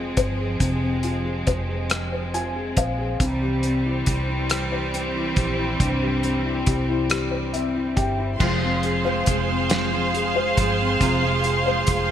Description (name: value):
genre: six-eight pop ballad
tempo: 46 BPM (dotted quarters)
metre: 6/8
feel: straight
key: F minor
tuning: A4 = 440 Hz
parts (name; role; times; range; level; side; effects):
- dark upright piano; accompaniment; 0.0-12.1 s; G2 to Ab5; -26 LUFS; left 4 dB; lush chorus
- rich studio string section; sustained chords; 0.0-12.1 s; E3 to C6; -25 LUFS; right 1 dB; none
- vintage muted fingered electric bass; bass; 0.0-12.1 s; F1 to C2; -27 LUFS; right 1 dB; none
- loose indie drum kit; drums; 0.2-12.1 s; crash cymbal, hi-hat, kick drum, rim click, snare drum; -24 LUFS; equal; none
- fingerpicked steel-string acoustic guitar; arpeggios; 8.4-12.1 s; F2 to F4; -28 LUFS; right 10 dB; none
room: moderate plate reverb, RT60 2.5 s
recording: bright 1980s-style digital production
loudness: -20 LUFS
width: side -10 dB against mid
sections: 0.0-8.4 A section; 8.4-12.1 B section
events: upright piano fill 1.9-3.2, 7.1-8.4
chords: 0.0 Fm; 3.2 C; 8.4 Fm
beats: | 0.60 1.90 | 3.20 4.50 | 5.80 7.10 | 8.40 9.71 | 11.01